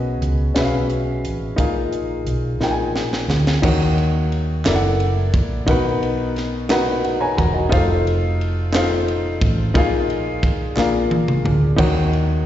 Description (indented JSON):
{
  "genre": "slow gospel",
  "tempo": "59 BPM (dotted quarters)",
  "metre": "6/8",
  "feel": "straight",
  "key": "Eb minor",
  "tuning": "A4 = 441 Hz",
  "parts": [
    { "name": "dark upright piano", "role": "accompaniment", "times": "0.0-12.5 s", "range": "Bb2 to A#5", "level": "-20 LUFS", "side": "left 2 dB", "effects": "slapback echo" },
    { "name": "hollow-body short-scale fingered electric bass", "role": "bass", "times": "0.0-12.5 s", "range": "Fb1 to Eb2", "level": "-21 LUFS", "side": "right 1 dB", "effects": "none" },
    { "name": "tight funk drum kit", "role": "drums", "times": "0.2-12.3 s", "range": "crash cymbal, hi-hat, kick drum, ride cymbal, snare drum, toms", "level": "-23 LUFS", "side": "right 1 dB", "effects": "none" },
    { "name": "group handclap", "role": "percussion", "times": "4.7-11.1 s", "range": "none", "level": "-36 LUFS", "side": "right 4 dB", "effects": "none" }
  ],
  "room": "light reverb, small room ambience",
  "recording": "live gig heard through the venue's PA, recital hall reverb, nothing above 7.7 kHz",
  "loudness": "-17 LUFS",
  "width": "side -12 dB against mid",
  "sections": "0.0-3.6 A section; 3.6-12.5 B section",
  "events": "drum fill 2.6-3.6, 10.8-11.8; upright piano fill 6.7-7.7",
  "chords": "0.0 B69; 1.6 Bb7sus4; 3.6 Ebm7; 4.7 Gb7alt; 5.7 Bmaj7; 7.7 F7; 9.8 Bb7sus4; 10.8 Bb7; 11.8 Ebm7"
}